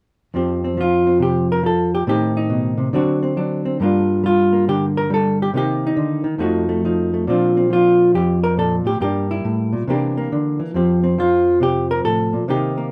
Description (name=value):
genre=solo jazz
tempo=138 BPM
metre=4/4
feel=swing 65% on 8ths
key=F major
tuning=A4 = 443 Hz
part: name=hollow-body jazz guitar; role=solo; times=0.3-12.9 s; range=F2 to Bb4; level=-18 LUFS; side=equal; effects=none
room=light reverb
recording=none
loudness=-18 LUFS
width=mono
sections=0.3-12.9 A section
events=none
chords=0.3 Fsus2; 2.1 Am7b5; 2.9 D7; 3.8 Gm7; 5.5 Cm9; 6.4 F7b9; 7.3 Bbmaj9; 9.0 Gm; 9.9 C9; 10.7 Fadd9